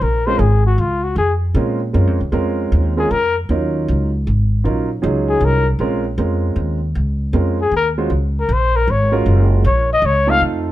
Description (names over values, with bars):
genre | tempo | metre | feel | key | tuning
jazz, small-group swing and bop | 156 BPM | 3/4 | swing 66% on 8ths | Bb minor | A4 = 440 Hz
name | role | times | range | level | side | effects
breathy trumpet | melody | 0.0-10.4 s | F4 to F5 | -17 LUFS | left 3 dB | none
upright bass | bass | 0.0-10.7 s | Gb1 to Bb2 | -17 LUFS | equal | none
warm upright piano | accompaniment | 0.3-10.7 s | Gb3 to C5 | -20 LUFS | right 3 dB | none
room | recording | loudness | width
light reverb | dark, warm production | -14 LUFS | side -14 dB against mid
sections
0.0-10.7 A section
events
trumpet solo 0.0-10.7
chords
0.0 Bbm7; 8.1 Gbmaj7